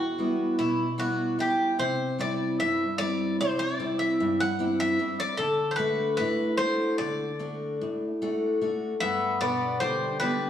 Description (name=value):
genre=greek folk, Greek bouzouki band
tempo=150 BPM (eighths)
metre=9/8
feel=straight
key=unclear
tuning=A4 = 440 Hz
part: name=Greek bouzouki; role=melody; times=0.0-10.5 s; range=E4 to F#5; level=-28 LUFS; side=left 1 dB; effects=none
part: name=picked steel-string acoustic guitar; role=accompaniment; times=0.0-10.5 s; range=E2 to G4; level=-27 LUFS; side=equal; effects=none
part: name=Greek bouzouki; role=second line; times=9.0-10.5 s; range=G3 to B3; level=-28 LUFS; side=left 2 dB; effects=none
room=wet stone room reverb, RT60 1.3 s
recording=band playing live in one room, small room ambience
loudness=-24 LUFS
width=side -10 dB against mid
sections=0.0-10.5 A section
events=none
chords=0.0 Em; 1.8 C; 5.4 D; 9.0 G